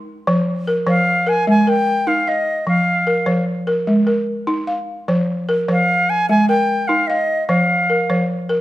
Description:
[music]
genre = west african traditional, West African string and xylophone music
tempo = 100 BPM (dotted quarters)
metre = 12/8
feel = straight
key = F minor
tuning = A4 = 445 Hz
[part]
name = balafon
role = arpeggios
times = 0.0-8.6 s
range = F3 to F5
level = -17 LUFS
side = equal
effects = none
[part]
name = bright wooden flute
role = melody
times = 0.9-8.2 s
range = Eb5 to Ab5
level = -17 LUFS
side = equal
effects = none
[sound]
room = moderate recital hall reverb, RT60 1.5 s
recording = none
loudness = -15 LUFS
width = side -15 dB against mid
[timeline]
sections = 0.0-8.6 A section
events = none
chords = 0.3 F5; 1.5 Ab5; 2.7 F5; 3.9 Ab5; 5.1 F5; 6.3 Ab5; 7.5 F5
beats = | 0.28 0.88 1.48 2.08 | 2.68 3.28 3.88 4.48 | 5.08 5.68 6.29 6.89 | 7.49 8.09

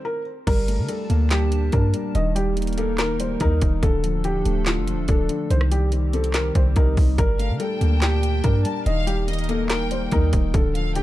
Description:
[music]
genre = hip hop, trap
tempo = 143 BPM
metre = 4/4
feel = half-time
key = G minor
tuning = A4 = 440 Hz
[part]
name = felt-muted upright piano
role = melody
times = 0.0-11.0 s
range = F4 to Eb5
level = -27 LUFS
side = equal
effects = digital delay
[part]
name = dark concert grand piano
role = accompaniment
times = 0.0-11.0 s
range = D3 to Eb4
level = -28 LUFS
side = left 5 dB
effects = none
[part]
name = hollow soft pad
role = sustained chords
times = 0.8-11.0 s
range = Bb2 to A5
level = -32 LUFS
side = right 2 dB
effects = chorus
[part]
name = clean 808-style bass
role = bass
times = 0.5-11.0 s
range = D1 to D3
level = -22 LUFS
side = equal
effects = none
[part]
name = trap drum kit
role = drums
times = 0.5-11.0 s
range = crash cymbal, handclaps, hi-hat, kick drum, rim click, snare drum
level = -23 LUFS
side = equal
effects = none
[part]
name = warm symphonic violin section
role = second line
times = 7.4-11.0 s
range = Eb5 to A5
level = -32 LUFS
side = left 3 dB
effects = digital delay
[sound]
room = small room reverb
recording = dark, warm production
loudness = -19 LUFS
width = side -15 dB against mid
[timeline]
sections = 0.5-11.0 A section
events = stop 0.0-0.5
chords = 0.5 Gmadd9; 2.1 Eb; 3.8 Dm; 5.5 Cm; 7.2 Gmadd9; 8.9 Eb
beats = 0.05 | 0.47 0.89 1.31 1.73 | 2.15 2.57 2.99 3.41 | 3.83 4.25 4.67 5.09 | 5.50 5.92 6.34 6.76 | 7.18 7.60 8.02 8.44 | 8.86 9.28 9.70 10.12 | 10.54 10.96

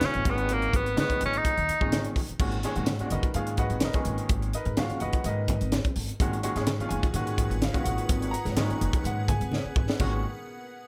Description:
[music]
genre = electric jazz fusion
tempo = 126 BPM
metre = 4/4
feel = straight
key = G# dorian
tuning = A4 = 439 Hz
[part]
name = bright tenor saxophone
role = melody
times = 0.0-2.1 s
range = A#3 to D#4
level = -29 LUFS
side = equal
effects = slapback echo
[part]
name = bright baby grand piano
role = accompaniment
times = 0.0-10.2 s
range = A#2 to A#5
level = -35 LUFS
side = equal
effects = none
[part]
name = upright bass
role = bass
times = 0.0-10.2 s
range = F#1 to G#2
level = -33 LUFS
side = equal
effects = none
[part]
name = crisp fusion drum kit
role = drums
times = 0.0-10.1 s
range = crash cymbal, hi-hat, kick drum, snare drum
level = -31 LUFS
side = equal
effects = none
[part]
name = congas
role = percussion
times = 0.0-10.2 s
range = none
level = -39 LUFS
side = equal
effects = none
[part]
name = icy glass pad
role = sustained chords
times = 6.9-10.2 s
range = A#2 to F#5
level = -41 LUFS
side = equal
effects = chorus, built-in reverb
[sound]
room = light reverb, small room ambience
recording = none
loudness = -27 LUFS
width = mono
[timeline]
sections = 0.0-2.4 A section; 2.4-10.0 B section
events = drum fill 9.5-10.0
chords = 0.3 G#9sus4; 2.4 G#m9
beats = 0.01 | 0.49 0.97 1.45 1.92 | 2.40 2.87 3.35 3.83 | 4.30 4.78 5.25 5.73 | 6.20 6.68 7.15 7.63 | 8.10 8.58 9.05 9.53 | 10.00

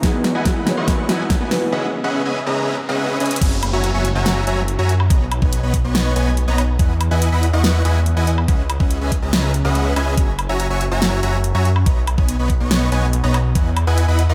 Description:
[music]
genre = future bass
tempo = 142 BPM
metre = 4/4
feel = half-time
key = unclear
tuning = A4 = 440 Hz
[part]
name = felt-muted upright piano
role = accompaniment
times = 0.0-1.7 s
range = E3 to C#5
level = -28 LUFS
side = equal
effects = lush chorus, sidechain pumping, analog delay
[part]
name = unison pluck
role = arpeggios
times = 0.0-1.7 s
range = B3 to F#4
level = -31 LUFS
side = equal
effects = none
[part]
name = dense compressed supersaw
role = riff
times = 0.0-14.3 s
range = B3 to C#6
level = -24 LUFS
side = equal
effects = sidechain pumping, low-pass filter, analog delay
[part]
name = detuned saw bass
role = bass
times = 0.0-14.3 s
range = F#1 to F#2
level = -21 LUFS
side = equal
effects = chorus, sidechain pumping, high-pass filter
[part]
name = big-room dance drum kit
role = drums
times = 0.0-14.3 s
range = crash cymbal, hi-hat, snare drum, woodblock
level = -25 LUFS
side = equal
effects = none
[part]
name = electronic kick drum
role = drums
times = 0.0-13.6 s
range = none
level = -20 LUFS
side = equal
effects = overdrive
[part]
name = riser and downlifter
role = sound effects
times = 1.7-6.8 s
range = none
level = -34 LUFS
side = equal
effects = none
[sound]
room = moderate plate reverb, RT60 2.0 s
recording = dreamy mix soaked in reverb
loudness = -18 LUFS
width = mono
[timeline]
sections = 0.0-3.4 A section; 3.4-14.3 B section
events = build-up 0.0-3.4; drum fill 0.0-1.7, 3.2; drop 3.4-14.3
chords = 0.0 Emaj9; 1.7 C#m11; 3.4 F#9; 5.1 Bmaj7; 6.8 Emaj9; 8.5 C#m11; 10.2 F#9; 11.9 Bmaj7; 13.6 Emaj9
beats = | 0.03 0.46 0.88 1.30 | 1.72 2.15 2.57 2.99 | 3.41 3.83 4.26 4.68 | 5.10 5.53 5.95 6.37 | 6.79 7.22 7.64 8.06 | 8.48 8.91 9.33 9.75 | 10.17 10.60 11.02 11.44 | 11.86 12.29 12.71 13.13 | 13.55 13.98

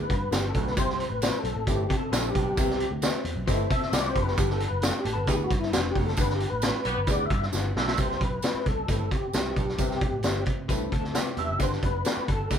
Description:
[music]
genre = uptempo 1960s-style soul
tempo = 133 BPM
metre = 4/4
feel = straight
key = unclear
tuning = A4 = 439 Hz
[part]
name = mellow tonewheel organ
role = melody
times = 0.0-12.6 s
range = E4 to E5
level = -30 LUFS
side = left 1 dB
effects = chorus vibrato, slow rotary speaker
[part]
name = warm upright piano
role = accompaniment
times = 0.0-12.6 s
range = G2 to F#5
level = -35 LUFS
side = left 5 dB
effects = none
[part]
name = warm baritone saxophone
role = riff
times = 0.0-12.6 s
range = D2 to C3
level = -35 LUFS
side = right 5 dB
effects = none
[part]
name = vintage muted picked electric bass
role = bass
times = 0.0-12.6 s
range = F1 to C3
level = -31 LUFS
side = equal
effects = tube saturation
[part]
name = vintage drum kit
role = drums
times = 0.1-12.6 s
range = hi-hat, kick drum, snare drum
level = -28 LUFS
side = equal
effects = none
[part]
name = tambourine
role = percussion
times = 0.3-12.6 s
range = none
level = -38 LUFS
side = right 6 dB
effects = none
[part]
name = electric guitar through a small old amp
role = riff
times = 1.9-5.9, 10.7-12.6 s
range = B3 to C5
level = -36 LUFS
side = left 4 dB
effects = tremolo
[part]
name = mellow horn section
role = second line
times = 6.8-7.0 s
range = B3 to B4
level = -34 LUFS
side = equal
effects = none
[sound]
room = light reverb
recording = band playing live in one room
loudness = -24 LUFS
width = side -8 dB against mid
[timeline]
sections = 0.0-8.0 A section; 8.0-12.6 B section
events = tonewheel organ solo 0.0-8.0; band accent 6.2-8.0; drum fill 7.5-8.0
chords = 0.0 Gmaj7; 0.8 Cmaj7; 4.4 Gmaj7; 8.0 Cmaj7; 11.6 Gmaj7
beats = 0.32 | 0.77 1.22 1.67 2.12 | 2.58 3.03 3.48 3.93 | 4.38 4.83 5.28 5.73 | 6.18 6.63 7.08 7.53 | 7.98 8.44 8.89 9.34 | 9.79 10.24 10.70 11.15 | 11.60 12.05 12.51

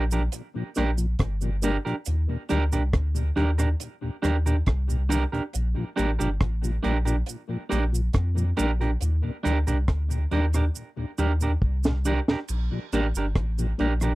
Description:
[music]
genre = roots reggae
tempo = 69 BPM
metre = 4/4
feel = straight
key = Bb major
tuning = A4 = 441 Hz
[part]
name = electric guitar at the edge of break-up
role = accompaniment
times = 0.0-14.1 s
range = D4 to Bb4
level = -29 LUFS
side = right 4 dB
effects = tape echo
[part]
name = warm sub bass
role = bass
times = 0.0-14.2 s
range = G1 to F2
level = -24 LUFS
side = equal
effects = none
[part]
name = mellow tonewheel organ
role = accompaniment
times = 0.1-14.1 s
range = Eb2 to D4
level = -30 LUFS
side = left 2 dB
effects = chorus vibrato, tape echo
[part]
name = deep reggae drum kit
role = drums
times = 0.1-14.2 s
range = crash cymbal, hi-hat, kick drum, rim click, snare drum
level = -25 LUFS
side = equal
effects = none
[part]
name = cabasa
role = percussion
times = 0.1-14.2 s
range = none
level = -38 LUFS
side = right 8 dB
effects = none
[sound]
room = little or no reverb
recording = dry, close 1970s-style studio recording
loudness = -23 LUFS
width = side -19 dB against mid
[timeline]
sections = 0.0-12.5 A section; 12.5-14.2 B section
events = drum fill 10.7-12.5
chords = 0.0 Bb6; 2.1 Ebmaj7; 5.5 Bb6; 9.0 Ebmaj7; 12.5 Bb6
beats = 0.33 1.19 | 2.06 2.93 3.80 4.67 | 5.54 6.40 7.27 8.14 | 9.01 9.88 10.75 11.62 | 12.48 13.35

